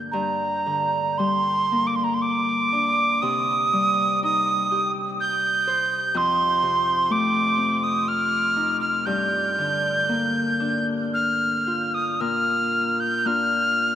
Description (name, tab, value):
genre	celtic folk, Celtic slow air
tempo	55-63 BPM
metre	3/4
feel	rubato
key	G minor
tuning	A4 = 440 Hz
part	Celtic harp	accompaniment	0.0-13.9 s	F2 to C5	-27 LUFS	left 2 dB	none
part	mellow mid whistle	melody	0.1-13.9 s	Bb5 to G6	-21 LUFS	right 2 dB	analog delay
room	wet huge ambient reverb, RT60 8.2 s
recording	dreamy mix soaked in reverb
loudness	-20 LUFS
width	side -10 dB against mid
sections	0.1-12.2 A section; 12.2-13.9 B section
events	none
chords	0.1 Gm; 3.2 Cm; 6.2 F7; 9.1 Gm7; 12.2 Bb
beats	| 0.13 1.19 2.22 | 3.22 4.23 5.20 | 6.16 7.11 8.07 | 9.06 10.09 11.14 | 12.21 13.27